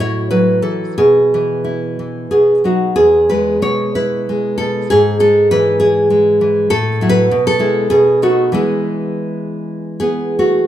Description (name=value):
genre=romantic piece for solo classical guitar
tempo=78-103 BPM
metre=3/4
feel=rubato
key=E major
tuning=A4 = 440 Hz
part: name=nylon-string guitar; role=solo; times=0.0-10.7 s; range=E2 to C#5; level=-12 LUFS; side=equal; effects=none
room=moderate recital hall reverb, RT60 1.5 s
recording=minimal, uncompressed stereo recording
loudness=-12 LUFS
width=side -11 dB against mid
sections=0.0-10.7 A section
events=none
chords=0.0 F#m7/A; 1.0 E/B; 2.3 B; 3.0 E; 4.9 E/G#; 6.7 F#m7/A; 7.3 E/B; 7.9 B7; 8.6 E